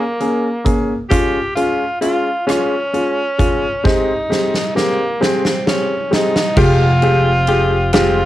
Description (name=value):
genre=six-eight pop ballad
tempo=44 BPM (dotted quarters)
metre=6/8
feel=straight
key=F minor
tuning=A4 = 443 Hz
part: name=bright tenor saxophone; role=melody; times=0.0-8.3 s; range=Bb3 to G4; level=-19 LUFS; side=equal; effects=cassette tape
part: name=clear baby grand piano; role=accompaniment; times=0.2-8.2 s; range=Ab3 to Ab4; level=-18 LUFS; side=left 1 dB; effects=cassette tape
part: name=huge arena drum kit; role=drums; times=0.2-8.1 s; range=crash cymbal, hi-hat, kick drum, ride cymbal, rim click, snare drum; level=-19 LUFS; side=equal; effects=none
part: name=direct-recorded clean electric guitar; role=arpeggios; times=6.6-8.3 s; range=F3 to G4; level=-22 LUFS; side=left 4 dB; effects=cassette tape
part: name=upright bass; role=bass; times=6.6-8.3 s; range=F1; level=-15 LUFS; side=right 1 dB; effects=none
room=light reverb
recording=home recording on cassette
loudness=-13 LUFS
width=side -14 dB against mid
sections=0.0-6.6 A section; 6.6-8.3 B section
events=drum fill 3.8-6.6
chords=0.0 Bbm7; 1.1 Db; 3.8 Abmaj7; 6.6 Fmadd9